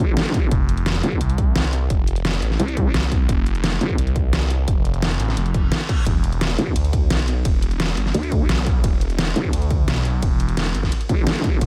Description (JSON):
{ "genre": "dark technical drum and bass", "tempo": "173 BPM", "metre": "4/4", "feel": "straight", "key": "E phrygian", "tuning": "A4 = 440 Hz", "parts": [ { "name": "vowel-sweep wobble bass", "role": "bass", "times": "0.0-4.0, 6.6-11.6 s", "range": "E1 to D2", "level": "-23 LUFS", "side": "equal", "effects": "chorus" }, { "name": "dubstep drum kit", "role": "drums", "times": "0.0-11.7 s", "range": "hi-hat, ride cymbal, snare drum", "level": "-27 LUFS", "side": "equal", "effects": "none" }, { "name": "electronic kick drum", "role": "drums", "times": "0.3-11.7 s", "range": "none", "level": "-23 LUFS", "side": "equal", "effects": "none" }, { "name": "phased detuned saw bass", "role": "bass", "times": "0.5-11.7 s", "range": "E1 to D2", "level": "-24 LUFS", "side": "equal", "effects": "phaser, tube saturation, sidechain pumping" }, { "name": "reverse cymbal and zap", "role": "sound effects", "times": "5.5-6.1, 8.6-8.7 s", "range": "none", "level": "-37 LUFS", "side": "equal", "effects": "none" } ], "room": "little or no reverb", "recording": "none", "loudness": "-20 LUFS", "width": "mono", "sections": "0.0-11.7 A section", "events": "reverse cymbal 5.5-6.1", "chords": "0.0 Em; 0.5 F5; 6.1 E5", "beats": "0.17 | 0.52 0.86 1.21 1.56 | 1.90 2.25 2.60 2.94 | 3.29 3.64 3.98 4.33 | 4.68 5.02 5.37 5.72 | 6.06 6.41 6.76 7.11 | 7.45 7.80 8.14 8.49 | 8.84 9.19 9.53 9.88 | 10.23 10.57 10.92 11.27 | 11.61" }